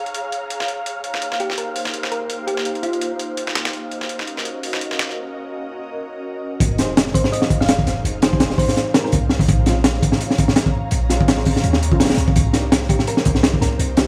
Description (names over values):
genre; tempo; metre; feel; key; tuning
drum and bass, jungle; 167 BPM; 4/4; swing 55% on 16ths; F minor; A4 = 440 Hz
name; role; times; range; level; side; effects
ethereal airy pad; sustained chords; 0.0-14.1 s; Bb3 to Bb5; -32 LUFS; equal; ensemble chorus, built-in reverb, vintage 12-bit sampler grit
wind-like tuned noise texture; texture; 0.0-5.2 s; F5; -34 LUFS; equal; built-in reverb
dusty soul sampler-style drum kit; drums; 0.1-5.2 s; hi-hat, snare drum; -27 LUFS; equal; high-pass filter on hats, high-pass filter on snare
thumb-piano-like synth pluck; melody; 1.4-3.1, 7.1-9.1, 12.9-14.1 s; F4 to F5; -28 LUFS; equal; chorus, dub echo
warm 808-style bass; bass; 6.6-14.1 s; F1 to Eb2; -24 LUFS; equal; none
crunchy breakbeat drum kit; drums; 6.6-14.1 s; hi-hat, kick drum, snare drum; -18 LUFS; equal; none
dark baby grand piano; stabs; 6.8-14.1 s; Ab3 to C5; -29 LUFS; equal; dub echo
room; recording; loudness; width
light reverb; studio ambience; -19 LUFS; mono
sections
0.0-6.6 A section; 6.6-14.1 B section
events
break 5.2-6.6; drop 6.6-14.1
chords
0.0 Bbm7; 0.9 Cm7; 3.7 Ebm7; 6.6 Fm7; 9.5 Bbm7; 12.4 Cm7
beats
0.14 0.50 | 0.86 1.22 1.58 1.94 | 2.30 2.66 3.02 3.38 | 3.73 4.09 4.45 4.81 | 5.17 5.53 5.89 6.25 | 6.61 6.97 7.33 7.69 | 8.05 8.40 8.77 9.12 | 9.48 9.84 10.20 10.56 | 10.92 11.28 11.64 12.00 | 12.36 12.72 13.08 13.44 | 13.79